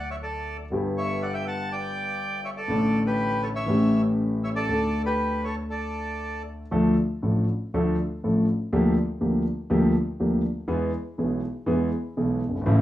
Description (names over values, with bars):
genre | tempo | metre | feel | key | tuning
tango | 121 BPM | 4/4 | rubato | D major, D minor from 6.7 s | A4 = 440 Hz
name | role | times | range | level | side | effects
bandoneon | melody | 0.0-6.4 s | G4 to A5 | -29 LUFS | equal | none
warm concert grand piano | accompaniment | 0.0-12.8 s | F#1 to A4 | -23 LUFS | equal | none
room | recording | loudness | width
wet studio reverb, RT60 0.6 s | rough home demo mix, small room ambience | -23 LUFS | side -14 dB against mid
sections
0.0-6.7 A section; 6.7-12.8 B section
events
none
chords
0.0 D; 0.7 G; 2.7 D5/A; 3.7 A7; 4.7 D5; 6.7 Dm; 8.7 Gm7/D; 10.7 E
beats
0.23 | 0.72 1.22 1.71 2.20 | 2.69 3.19 3.69 4.18 | 4.68 5.18 5.69 6.20 | 6.71 7.22 7.73 8.23 | 8.72 9.21 9.70 10.20 | 10.69 11.18 11.68 12.18 | 12.68